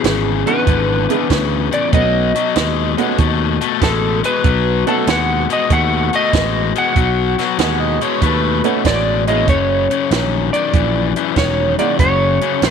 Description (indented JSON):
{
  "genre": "electric blues shuffle",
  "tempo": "95 BPM",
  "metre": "4/4",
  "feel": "swing 68% on 8ths",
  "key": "B mixolydian",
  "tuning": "A4 = 440 Hz",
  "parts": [
    { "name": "electric slide guitar", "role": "melody", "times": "0.0-12.7 s", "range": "G#4 to F#5", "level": "-19 LUFS", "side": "right 1 dB", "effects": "none" },
    { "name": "cranked stack guitar", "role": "riff", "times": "0.0-12.7 s", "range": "E2 to A3", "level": "-18 LUFS", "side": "left 14 dB", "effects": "overdrive" },
    { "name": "fingered electric bass", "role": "bass", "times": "0.0-12.7 s", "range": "E1 to D#2", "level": "-20 LUFS", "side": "right 1 dB", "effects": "none" },
    { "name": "compact cocktail drum kit", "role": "drums", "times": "0.0-12.7 s", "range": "hi-hat, kick drum, snare drum", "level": "-18 LUFS", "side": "right 4 dB", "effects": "none" },
    { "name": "clear baby grand piano", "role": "accompaniment", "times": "0.5-12.6 s", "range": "G#3 to G#4", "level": "-22 LUFS", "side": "right 13 dB", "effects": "none" },
    { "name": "overdriven harmonica", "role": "second line", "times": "7.6-8.7 s", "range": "B4 to F#5", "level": "-23 LUFS", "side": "right 12 dB", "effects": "none" }
  ],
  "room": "light reverb, studio reverb",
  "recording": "1960s-style stereo with parts hard left and right",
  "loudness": "-13 LUFS",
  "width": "side -7 dB against mid",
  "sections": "0.0-12.7 A section",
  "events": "none",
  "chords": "0.0 E7; 1.9 B7; 9.5 F#7"
}